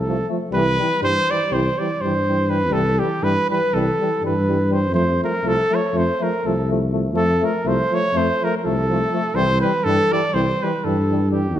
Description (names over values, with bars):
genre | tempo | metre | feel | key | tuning
balkan folk, Balkan brass band | 245 BPM (eighths) | 9/8 | straight | unclear | A4 = 439 Hz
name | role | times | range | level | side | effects
mellow trumpet | melody | 0.0-11.6 s | Gb4 to D5 | -21 LUFS | right 1 dB | slapback echo
dark tuba | bass | 0.0-11.6 s | C2 to G2 | -22 LUFS | equal | none
clear euphonium | accompaniment | 0.1-11.6 s | Gb3 to A3 | -26 LUFS | left 6 dB | none
mellow trombone | accompaniment | 0.1-11.6 s | Eb3 to F3 | -26 LUFS | right 3 dB | none
room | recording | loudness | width
wet recital hall reverb, RT60 1.7 s | none | -17 LUFS | side -11 dB against mid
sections
0.0-11.6 A section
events
none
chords
0.0 F; 0.5 C; 4.9 F; 9.3 C